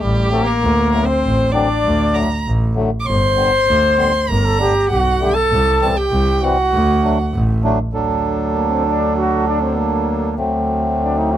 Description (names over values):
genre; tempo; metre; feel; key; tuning
klezmer; 98 BPM; 2/4; straight; unclear; A4 = 444 Hz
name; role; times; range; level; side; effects
bright trombone; melody; 0.0-11.4 s; G3 to C5; -18 LUFS; left 1 dB; none
clear violin; second line; 0.0-7.3 s; G4 to D6; -22 LUFS; right 3 dB; none
bright double bass; bass; 0.0-11.4 s; G1 to D2; -18 LUFS; right 1 dB; none
mellow accordion; accompaniment; 0.3-11.4 s; D3 to A4; -20 LUFS; equal; none
room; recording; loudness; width
light reverb; close, detailed microphones; -14 LUFS; side -11 dB against mid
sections
0.0-7.9 A section; 7.9-11.4 B section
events
trombone solo 0.0-7.9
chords
0.0 D; 3.1 G; 5.5 C; 6.7 D